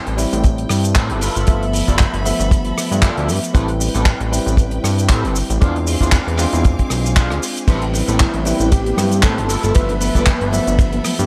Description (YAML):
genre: nu-disco, nu disco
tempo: 116 BPM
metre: 4/4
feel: swing 55% on 16ths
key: A minor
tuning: A4 = 438 Hz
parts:
  - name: tine electric piano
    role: accompaniment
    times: 0.0-11.3 s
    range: F3 to E5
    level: -25 LUFS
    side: equal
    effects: sidechain pumping, analog delay
  - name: clear studio string section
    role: sustained chords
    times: 0.0-11.3 s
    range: C4 to D6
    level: -34 LUFS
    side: equal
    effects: sidechain pumping
  - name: electric guitar at the edge of break-up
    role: riff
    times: 0.1-10.7 s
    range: C4 to D5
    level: -29 LUFS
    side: equal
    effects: ensemble chorus, analog delay
  - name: fat analog bass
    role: bass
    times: 0.1-11.3 s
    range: G1 to A2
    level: -22 LUFS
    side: equal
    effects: sidechain pumping
  - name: damped 70s drum kit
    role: drums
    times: 0.1-11.3 s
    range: cabasa, crash cymbal, handclaps, hi-hat, ride cymbal, rim click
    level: -25 LUFS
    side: equal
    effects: small room reverb
  - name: kick drum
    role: drums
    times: 0.4-10.9 s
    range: none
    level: -16 LUFS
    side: equal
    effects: small room reverb
  - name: bongos and congas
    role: percussion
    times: 7.7-11.3 s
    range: none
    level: -30 LUFS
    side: equal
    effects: none
  - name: unison lead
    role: melody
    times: 8.2-11.0 s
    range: E4 to B4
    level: -25 LUFS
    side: equal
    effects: analog delay
room: small room ambience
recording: none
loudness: -17 LUFS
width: mono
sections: 0.0-11.3 A section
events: none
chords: 0.0 Am9; 1.2 G13; 3.5 Am9; 5.6 E7b9b13; 7.7 Am9; 9.5 G13